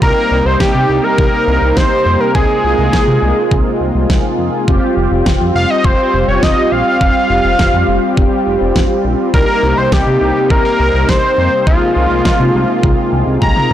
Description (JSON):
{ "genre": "synth-pop", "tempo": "103 BPM", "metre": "4/4", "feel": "straight", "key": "F minor", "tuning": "A4 = 442 Hz", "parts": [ { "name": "fat analog lead", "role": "melody", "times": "0.0-13.7 s", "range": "F4 to Bb5", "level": "-14 LUFS", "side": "equal", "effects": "none" }, { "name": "mellow synth brass", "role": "accompaniment", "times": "0.0-13.7 s", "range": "C4 to Ab4", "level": "-19 LUFS", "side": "equal", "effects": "chorus, phaser" }, { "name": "warm analog pad", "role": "sustained chords", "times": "0.0-13.7 s", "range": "C3 to F4", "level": "-18 LUFS", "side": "left 1 dB", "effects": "chorus" }, { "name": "chorused synth bass", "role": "bass", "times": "0.0-13.7 s", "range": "F1 to C3", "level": "-16 LUFS", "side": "equal", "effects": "transformer saturation" }, { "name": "pop drum kit", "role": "drums", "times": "0.0-13.7 s", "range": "kick drum, snare drum, toms", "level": "-14 LUFS", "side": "equal", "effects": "none" } ], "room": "light reverb", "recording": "blown-out, overdriven recording, overdrive", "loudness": "-10 LUFS", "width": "side -11 dB against mid", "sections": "0.0-13.7 A section", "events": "drum fill 13.4-13.7", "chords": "0.0 Cm7; 2.3 Ab6/C; 4.7 Fsus2; 9.3 Cm7; 11.7 Ab6/C" }